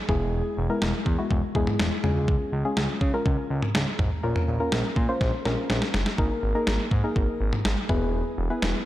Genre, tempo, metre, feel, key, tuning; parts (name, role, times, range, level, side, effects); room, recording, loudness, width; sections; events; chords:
synth-pop; 123 BPM; 4/4; straight; A4 = 440 Hz
soft round pluck; accompaniment; 0.1-8.8 s; G#3 to C5; -28 LUFS; left 1 dB; chorus, shimmer reverb
smooth synth bass; bass; 0.1-8.7 s; E1 to Db3; -28 LUFS; equal
clean 12-bit digital drum machine; drums; 0.1-8.7 s; kick drum, snare drum, toms; -26 LUFS; equal; overdrive
moderate lush hall reverb, RT60 1.9 s, digital ambience; dark, warm production; -23 LUFS; side -14 dB against mid
0.0-8.9 A section
drum fill 5.2-6.2
0.1 E; 2.0 Db; 4.2 Bbmadd9; 6.2 Absus2; 7.9 E